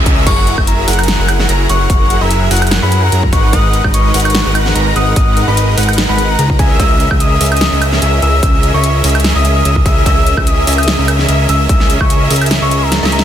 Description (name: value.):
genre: future bass.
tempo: 147 BPM.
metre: 4/4.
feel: swing 54% on 16ths, half-time.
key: C# dorian.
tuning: A4 = 440 Hz.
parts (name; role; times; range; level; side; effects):
airy dreamy lead; arpeggios; 0.0-13.2 s; D#5 to A#5; -22 LUFS; left 1 dB; chorus, sidechain pumping, tape echo.
supersaw chords; riff; 0.0-13.2 s; F#3 to A#5; -17 LUFS; right 1 dB; sidechain pumping.
fat analog bass; bass; 0.0-13.2 s; F#1 to F#2; -14 LUFS; equal; sidechain pumping.
big-room dance drum kit; drums; 0.1-13.2 s; crash cymbal, hi-hat, snare drum, woodblock; -17 LUFS; equal; none.
electronic kick drum; drums; 0.1-12.1 s; none; -12 LUFS; equal; none.
soft octave-layered synth lead; melody; 0.3-13.2 s; G#5 to E6; -19 LUFS; left 3 dB; chorus, sidechain pumping, ping-pong delay.
room: digital ambience.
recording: dense, heavily limited modern master.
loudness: -9 LUFS.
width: side -10 dB against mid.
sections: 0.0-13.2 A section.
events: kick drops out 12.5-13.2; drum fill 12.9-13.2.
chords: 0.3 F#9; 3.3 G#m7; 6.6 C#m69.